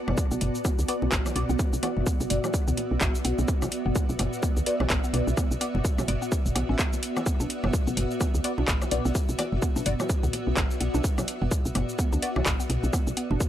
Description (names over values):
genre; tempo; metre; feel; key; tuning
minimal techno; 127 BPM; 4/4; swing 59% on 16ths; B minor; A4 = 440 Hz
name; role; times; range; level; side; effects
granular cloud pad; texture; 0.0-13.5 s; B3 to A5; -32 LUFS; right 1 dB; built-in reverb, sidechain pumping
mallet-like synth pluck; riff; 0.1-13.4 s; F#3 to D4; -36 LUFS; equal; chorus, sidechain pumping, analog delay
woody FM bass; bass; 0.1-13.4 s; F#1 to D2; -27 LUFS; equal; sidechain pumping
electronic toms, bongos and woodblock; percussion; 0.1-13.4 s; none; -34 LUFS; equal; overdrive
booming analog drum machine; drums; 0.2-13.5 s; handclaps, hi-hat, shaker; -32 LUFS; equal; none
electronic kick drum; drums; 0.2-13.5 s; none; -26 LUFS; equal; overdrive
filtered dub chord stab; stabs; 0.9-12.3 s; B3 to D5; -33 LUFS; left 3 dB; phaser, analog chorus, tape echo
room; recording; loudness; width
little or no reverb; dry, gritty hardware recording; -24 LUFS; side -11 dB against mid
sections
0.0-13.5 A section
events
none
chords
0.0 Bm